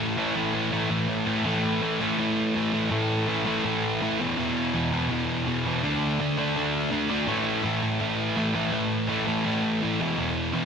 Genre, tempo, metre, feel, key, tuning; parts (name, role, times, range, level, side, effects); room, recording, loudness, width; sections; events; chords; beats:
punk; 165 BPM; 4/4; straight; A4 = 439 Hz
sludgy distorted guitar; solo; 0.0-10.7 s; E2 to D4; -23 LUFS; equal; overdrive, slapback echo
wet lush hall reverb, RT60 1.7 s, digital ambience; big arena sound; -23 LUFS; side -6 dB against mid
0.0-1.5 A section; 1.5-10.7 B section
half time 0.0-1.5
0.0 A5; 4.2 E5; 5.8 D5; 7.3 A5; 10.0 E5
0.36 0.72 1.09 | 1.46 1.82 2.19 2.55 | 2.92 3.28 3.65 4.01 | 4.38 4.74 5.11 5.47 | 5.83 6.20 6.56 6.92 | 7.28 7.65 8.01 8.37 | 8.73 9.10 9.46 9.82 | 10.18 10.55